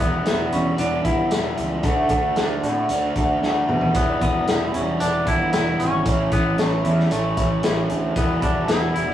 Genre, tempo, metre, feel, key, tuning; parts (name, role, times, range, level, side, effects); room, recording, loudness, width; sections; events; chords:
quiet-loud alternative rock; 114 BPM; 4/4; straight; E dorian; A4 = 440 Hz
twangy electric guitar; melody; 0.0-9.1 s; G3 to E4; -26 LUFS; left 1 dB
electric guitar through a small old amp; arpeggios; 0.0-9.1 s; E2 to F#4; -24 LUFS; left 1 dB
thick fuzz guitar; riff; 0.0-9.1 s; A2 to F#4; -26 LUFS; right 4 dB; distortion
fuzz picked electric bass; bass; 0.0-9.1 s; E1 to B2; -26 LUFS; equal; overdrive
loose indie drum kit; drums; 0.3-9.1 s; hi-hat, kick drum, snare drum, toms; -24 LUFS; left 1 dB
light reverb; rough rehearsal-room recording, studio reverb; -18 LUFS; side -11 dB against mid
0.0-9.1 A section
drum fill 3.4-4.0
0.0 Em; 1.8 D; 4.0 Em; 6.1 A; 8.2 Em